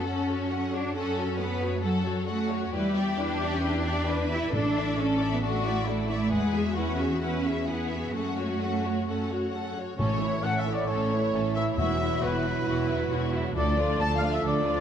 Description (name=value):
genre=cinematic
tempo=134 BPM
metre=4/4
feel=straight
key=A major from 10.0 s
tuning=A4 = 439 Hz
part: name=warm symphonic violin section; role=melody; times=0.0-14.8 s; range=B4 to A5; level=-38 LUFS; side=left 5 dB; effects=none
part: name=warm symphonic violin section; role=second line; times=0.0-14.8 s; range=C#4 to D5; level=-34 LUFS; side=left 4 dB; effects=none
part: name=warm symphonic viola section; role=accompaniment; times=0.0-14.8 s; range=D3 to D5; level=-34 LUFS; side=equal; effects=none
part: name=warm symphonic cello section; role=bass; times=0.0-14.8 s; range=D2 to E4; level=-30 LUFS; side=right 1 dB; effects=none
part: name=warm symphonic double bass section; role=bass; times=0.0-14.8 s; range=E1 to F#2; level=-32 LUFS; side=right 2 dB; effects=none
part: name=timpani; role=percussion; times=4.5-5.2, 10.0-12.4 s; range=E2 to A2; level=-34 LUFS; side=left 1 dB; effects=none
part: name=hollow concert flute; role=second line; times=10.0-14.8 s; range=B4 to A5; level=-33 LUFS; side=left 1 dB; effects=none
part: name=warm oboe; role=second line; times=10.0-14.8 s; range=B4 to A5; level=-33 LUFS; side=equal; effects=none
part: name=mellow French horn section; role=sustained chords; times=10.0-14.8 s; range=A3 to A4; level=-35 LUFS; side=left 1 dB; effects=none
part: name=mellow trombone section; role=sustained chords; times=10.0-14.8 s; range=E3 to A3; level=-34 LUFS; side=right 4 dB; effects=none
room=wet scoring stage reverb, RT60 1.7 s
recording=none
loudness=-25 LUFS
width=side -8 dB against mid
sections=0.0-10.0 A section; 10.0-14.8 B section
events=none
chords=0.0 F#m; 2.7 Em7; 4.5 Asus4; 6.3 Eadd9; 8.1 F#m; 10.0 A; 11.8 Esus2; 13.6 Dm